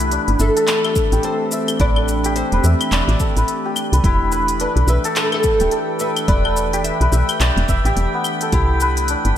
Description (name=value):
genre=organic downtempo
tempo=107 BPM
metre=4/4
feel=swing 60% on 16ths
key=E minor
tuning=A4 = 439 Hz
part: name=oud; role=melody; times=0.0-9.3 s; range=G4 to E5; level=-22 LUFS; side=equal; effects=ping-pong delay
part: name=warbly tape-like pad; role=sustained chords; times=0.0-9.4 s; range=E3 to B4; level=-26 LUFS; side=equal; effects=chorus, built-in reverb, sidechain pumping
part: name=santur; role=arpeggios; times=0.0-9.4 s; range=B3 to E5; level=-21 LUFS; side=left 1 dB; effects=ping-pong delay
part: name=woody FM bass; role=bass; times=0.0-9.3 s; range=D1 to E2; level=-18 LUFS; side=equal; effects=none
part: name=deep house drum kit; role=drums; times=0.0-9.3 s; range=claves, handclaps, hi-hat, shaker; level=-24 LUFS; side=left 2 dB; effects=small room ambience, gated reverb
part: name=electronic kick drum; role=drums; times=1.0-8.7 s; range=none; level=-19 LUFS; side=equal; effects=small room ambience
part: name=drifting glass-harmonics texture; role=texture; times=4.8-9.4 s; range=G5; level=-30 LUFS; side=right 3 dB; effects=chorus, built-in reverb
room=moderate lush hall reverb, RT60 1.9 s, digital ambience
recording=bright 1980s-style digital production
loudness=-15 LUFS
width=side -10 dB against mid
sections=0.0-9.4 A section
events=none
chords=0.0 C69; 1.8 Am7; 4.0 Em7; 8.5 C69